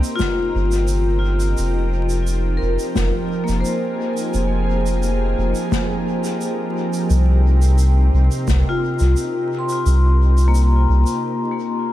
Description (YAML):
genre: ambient dub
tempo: 87 BPM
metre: 4/4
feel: straight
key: F minor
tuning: A4 = 440 Hz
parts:
  - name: soft additive organ-like pad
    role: sustained chords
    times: 0.0-11.2 s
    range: C3 to Bb4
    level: -24 LUFS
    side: right 2 dB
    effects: ensemble chorus, built-in reverb
  - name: vibraphone with medium hard mallets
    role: arpeggios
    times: 0.0-11.9 s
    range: Bb3 to C6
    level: -23 LUFS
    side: left 3 dB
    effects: tape echo
  - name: shaker and snare drum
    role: drums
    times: 0.0-11.2 s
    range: none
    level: -29 LUFS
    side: left 2 dB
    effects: dub echo
  - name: electronic kick drum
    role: drums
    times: 0.2-8.6 s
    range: none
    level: -25 LUFS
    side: equal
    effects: none
  - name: soft dub sub bass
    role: bass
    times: 0.5-11.0 s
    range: F1 to C2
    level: -16 LUFS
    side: equal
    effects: none
room: small room ambience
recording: echo-heavy mix, vinyl crackle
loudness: -16 LUFS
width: side -14 dB against mid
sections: 0.0-11.9 A section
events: fade-in on ambient pad 0.0-11.9; break 11.2-11.9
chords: 0.0 Cm7; 1.6 Fm11; 7.1 Cm7